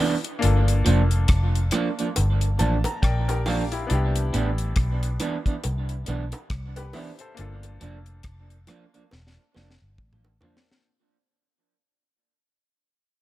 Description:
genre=lovers rock reggae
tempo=69 BPM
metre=4/4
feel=swing 59% on 16ths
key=unclear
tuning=A4 = 440 Hz
part: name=clear grand piano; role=accompaniment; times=0.0-10.9 s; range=Bb3 to Bb5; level=-32 LUFS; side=left 4 dB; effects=none
part: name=electric guitar through a small old amp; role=stabs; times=0.0-10.6 s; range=E3 to D4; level=-28 LUFS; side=right 4 dB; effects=warbly pitch drift, tape echo
part: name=deep reggae drum kit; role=drums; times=0.2-10.9 s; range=hi-hat, kick drum, rim click, snare drum, toms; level=-26 LUFS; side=equal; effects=none
part: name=vintage muted fingered electric bass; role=bass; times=0.4-10.4 s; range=E1 to C2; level=-23 LUFS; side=equal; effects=none
part: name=bongos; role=percussion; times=1.7-10.7 s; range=none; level=-34 LUFS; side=right 2 dB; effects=none
room=small room ambience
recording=none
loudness=-21 LUFS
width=side -16 dB against mid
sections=0.0-10.9 A section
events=fade-out 0.0-10.9; grand piano fill 2.2-3.9; drum fill 9.1-10.9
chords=0.4 Gm7; 3.9 Cmaj9; 7.4 Gm7

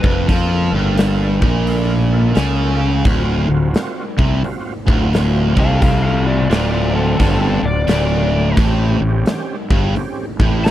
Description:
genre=blues rock power trio and southern rock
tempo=87 BPM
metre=4/4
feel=swing 64% on 8ths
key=unclear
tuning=A4 = 440 Hz
part: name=overdriven slide guitar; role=melody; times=0.0-0.3, 5.6-10.7 s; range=C4 to B5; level=-22 LUFS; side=left 2 dB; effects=none
part: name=overdriven tonewheel organ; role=sustained chords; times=0.0-10.7 s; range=Bb3 to A4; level=-28 LUFS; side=right 4 dB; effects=slow rotary speaker, chorus vibrato
part: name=distorted electric guitar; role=riff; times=0.0-10.7 s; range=D2 to F3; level=-18 LUFS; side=equal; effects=overdrive
part: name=fuzz fingered electric bass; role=bass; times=0.0-10.7 s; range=D1 to F2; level=-18 LUFS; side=equal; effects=overdrive
part: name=huge arena drum kit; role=drums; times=0.0-10.7 s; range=hi-hat, kick drum, snare drum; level=-19 LUFS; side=equal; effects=none
room=light reverb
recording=none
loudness=-14 LUFS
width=side -13 dB against mid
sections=0.0-10.7 A section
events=none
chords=0.3 Gm7; 3.1 D7#9; 8.6 A7#9

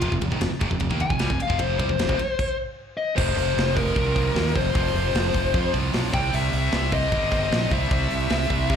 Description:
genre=hard rock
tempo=152 BPM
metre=4/4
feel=straight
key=unclear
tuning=A4 = 443 Hz
part: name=bluesy overdriven lead guitar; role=melody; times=0.0-8.8 s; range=F4 to Ab5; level=-26 LUFS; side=left 3 dB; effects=distortion, slapback echo
part: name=high-gain distorted guitar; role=riff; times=0.0-8.8 s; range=F2 to C4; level=-30 LUFS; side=right 14 dB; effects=distortion
part: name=tight distorted guitar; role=riff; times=0.0-8.8 s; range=F2 to C4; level=-30 LUFS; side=left 10 dB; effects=distortion, slapback echo
part: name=fuzz fingered electric bass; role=bass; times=0.0-8.8 s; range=F1 to C3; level=-26 LUFS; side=right 1 dB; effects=overdrive
part: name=tight metal drum kit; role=drums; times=0.0-8.8 s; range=crash cymbal, hi-hat, kick drum, ride cymbal, snare drum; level=-27 LUFS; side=equal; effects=none
room=studio reverb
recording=live gig heard through the venue's PA, club reverb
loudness=-20 LUFS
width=side -8 dB against mid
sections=0.0-3.2 A section; 3.2-8.8 B section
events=lead electric guitar solo 0.0-3.2; stop 2.4-3.2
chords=0.0 F5; 2.6 N.C.; 3.2 F5; 6.1 C

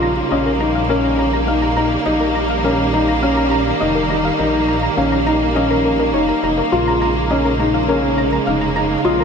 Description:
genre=piano and strings electronica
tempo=103 BPM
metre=4/4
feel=straight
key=Bb dorian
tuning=A4 = 440 Hz
part: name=warm studio string section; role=sustained chords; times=0.0-9.2 s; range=Db3 to Bb3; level=-20 LUFS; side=right 2 dB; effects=none
part: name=soft round pluck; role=arpeggios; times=0.0-9.2 s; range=Bb4 to Bb5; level=-23 LUFS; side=left 2 dB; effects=chorus, tape echo
part: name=felt-muted upright piano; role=riff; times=0.0-9.2 s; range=Db4 to F4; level=-18 LUFS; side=left 1 dB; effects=tape echo
part: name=dark detuned saw bass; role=bass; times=0.0-9.2 s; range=F1 to Bb1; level=-23 LUFS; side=right 1 dB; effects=none
room=wet huge ambient reverb, RT60 7.7 s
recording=dreamy mix soaked in reverb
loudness=-14 LUFS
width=side -6 dB against mid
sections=0.0-9.2 A section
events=none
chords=0.0 Bbm; 2.1 Eb; 6.7 Bbm7

